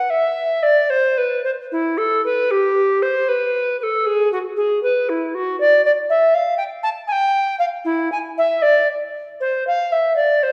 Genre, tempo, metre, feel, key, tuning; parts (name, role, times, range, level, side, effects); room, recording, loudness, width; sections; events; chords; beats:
classical, baroque-style fantasia for unaccompanied recorder; 77 BPM (dotted quarters); 6/8; uneven beats, rubato; E minor; A4 = 440 Hz
tenor recorder; solo; 0.0-10.5 s; E4 to A5; -18 LUFS; equal
wet recital hall reverb, RT60 1.8 s; heard from further back in the room; -19 LUFS; mono
0.1-10.5 A section
| 0.10 0.89 | 1.70 2.50 | 3.27 4.04 | 4.81 5.57 | 6.32 7.07 | 7.86 8.63 | 9.40 10.17